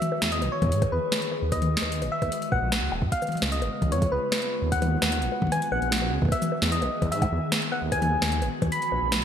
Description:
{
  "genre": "IDM",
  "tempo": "150 BPM",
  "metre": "4/4",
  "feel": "straight",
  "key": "G# minor",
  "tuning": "A4 = 440 Hz",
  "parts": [
    { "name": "soft struck synth lead", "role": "melody", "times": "0.0-9.2 s", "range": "B4 to B5", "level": "-28 LUFS", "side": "left 1 dB", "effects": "chorus, cassette tape, ping-pong delay, shimmer reverb" },
    { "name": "glassy FM pad", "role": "sustained chords", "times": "0.0-9.2 s", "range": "C#3 to G#4", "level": "-34 LUFS", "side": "equal", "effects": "ensemble chorus, built-in reverb, sidechain pumping, shimmer reverb" },
    { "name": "booming analog drum machine", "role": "drums", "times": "0.0-9.2 s", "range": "bongos, cabasa, hi-hat, snare drum, toms", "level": "-28 LUFS", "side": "left 1 dB", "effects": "gated reverb" },
    { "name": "dark detuned saw bass", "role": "bass", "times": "0.2-9.2 s", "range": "D#1 to G#2", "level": "-28 LUFS", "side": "right 1 dB", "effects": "none" },
    { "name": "electronic kick drum", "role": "drums", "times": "0.6-8.7 s", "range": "none", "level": "-27 LUFS", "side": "right 1 dB", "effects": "none" }
  ],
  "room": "light reverb, digital ambience",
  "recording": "bright 1980s-style digital production",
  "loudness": "-23 LUFS",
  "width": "side -8 dB against mid",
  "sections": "0.0-9.2 A section",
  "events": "none",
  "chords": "0.0 Emaj7; 1.5 G#m7; 3.1 C#7; 4.7 G#m7; 6.3 Emaj7; 7.9 G#m7"
}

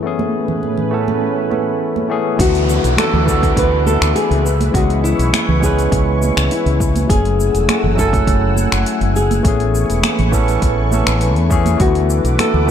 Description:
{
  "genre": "sunset chillout",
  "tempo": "102 BPM",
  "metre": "4/4",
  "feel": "straight",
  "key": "A major",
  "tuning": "A4 = 442 Hz",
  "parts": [
    { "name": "barky tine electric piano", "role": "accompaniment", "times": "0.0-12.7 s", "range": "E3 to G#5", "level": "-20 LUFS", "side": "moving between left 8 dB and right 7 dB", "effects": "auto-pan, digital delay" },
    { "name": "lush unison pad", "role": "sustained chords", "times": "0.0-12.7 s", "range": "A2 to E6", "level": "-24 LUFS", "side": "equal", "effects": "chorus, phaser" },
    { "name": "congas", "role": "percussion", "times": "0.2-12.7 s", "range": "none", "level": "-24 LUFS", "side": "right 4 dB", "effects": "none" },
    { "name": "flamenco guitar", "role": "melody", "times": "2.4-12.7 s", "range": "E4 to B4", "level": "-20 LUFS", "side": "left 2 dB", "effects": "tape echo" },
    { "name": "mellow fretless electric bass", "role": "bass", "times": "2.4-12.7 s", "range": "E1 to E2", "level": "-17 LUFS", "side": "equal", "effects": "none" },
    { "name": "deep house drum kit", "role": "drums", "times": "2.4-12.5 s", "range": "finger snaps, hi-hat, shaker", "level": "-23 LUFS", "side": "left 2 dB", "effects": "overdrive" },
    { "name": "electronic kick drum", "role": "drums", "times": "2.4-12.7 s", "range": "none", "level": "-18 LUFS", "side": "equal", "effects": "overdrive" },
    { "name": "downlifter", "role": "sound effects", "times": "2.4-7.1 s", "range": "none", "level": "-26 LUFS", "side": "left 2 dB", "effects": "none" }
  ],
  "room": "moderate lush hall reverb, RT60 2.9 s",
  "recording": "dark, warm production",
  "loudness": "-13 LUFS",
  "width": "side -9 dB against mid",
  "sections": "0.0-2.4 A section; 2.4-12.7 B section",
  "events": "none",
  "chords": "0.0 Amaj9; 2.4 D69; 4.5 C#m7; 7.1 F#m9; 9.5 Amaj9; 11.8 D69"
}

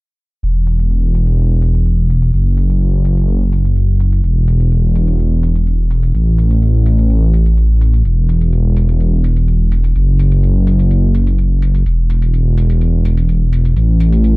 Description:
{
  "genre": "melodic techno",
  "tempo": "126 BPM",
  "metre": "4/4",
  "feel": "straight",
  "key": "unclear",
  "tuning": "A4 = 440 Hz",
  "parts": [
    { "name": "swelling detuned saw bass", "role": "bass", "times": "0.4-14.4 s", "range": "E1 to A1", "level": "-11 LUFS", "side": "equal", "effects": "none" },
    { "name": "electronic hi-hat", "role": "drums", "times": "0.4-14.3 s", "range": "none", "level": "-45 LUFS", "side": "left 1 dB", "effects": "low-pass filter on hats, low-pass filter on room" }
  ],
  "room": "little or no reverb",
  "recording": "none",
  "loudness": "-11 LUFS",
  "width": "side -23 dB against mid",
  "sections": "0.4-14.4 A section",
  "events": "none",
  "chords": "none"
}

